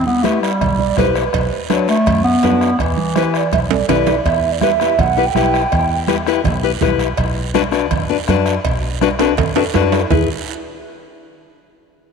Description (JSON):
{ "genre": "latin, cumbia", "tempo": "164 BPM", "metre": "4/4", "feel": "straight", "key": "E minor", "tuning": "A4 = 438 Hz", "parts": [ { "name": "dark clarinet", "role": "melody", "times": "0.0-3.9 s", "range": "E3 to B3", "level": "-17 LUFS", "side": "right 1 dB", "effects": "none" }, { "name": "fingered electric bass", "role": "bass", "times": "0.0-10.3 s", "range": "B1 to F#2", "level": "-21 LUFS", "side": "equal", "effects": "none" }, { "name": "congas", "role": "percussion", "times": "0.1-10.2 s", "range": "none", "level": "-23 LUFS", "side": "right 10 dB", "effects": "none" }, { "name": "nylon-string guitar", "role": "accompaniment", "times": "0.2-10.3 s", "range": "D4 to B4", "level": "-19 LUFS", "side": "left 12 dB", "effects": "none" }, { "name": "guiro", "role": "percussion", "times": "0.2-10.2 s", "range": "none", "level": "-31 LUFS", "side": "right 12 dB", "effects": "none" }, { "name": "bombo", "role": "percussion", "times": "0.3-10.2 s", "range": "none", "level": "-23 LUFS", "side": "left 1 dB", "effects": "none" }, { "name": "cowbell and timbales", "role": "percussion", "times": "0.6-10.2 s", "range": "none", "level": "-24 LUFS", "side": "right 12 dB", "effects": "none" }, { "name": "breathy round clay ocarina", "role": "second line", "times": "0.8-6.0, 10.1-10.3 s", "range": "G#4 to G5", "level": "-19 LUFS", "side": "right 8 dB", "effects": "none" } ], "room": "moderate plate reverb, RT60 3.2 s", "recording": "1960s-style stereo with parts hard left and right", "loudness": "-14 LUFS", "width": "side -5 dB against mid", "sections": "0.0-4.3 A section; 4.3-10.1 B section; 10.1-11.6 C section", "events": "drum fill 3.5-4.3, 9.2-10.1", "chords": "0.0 Em; 1.3 Bm; 2.8 Em; 7.2 Bm; 10.1 E" }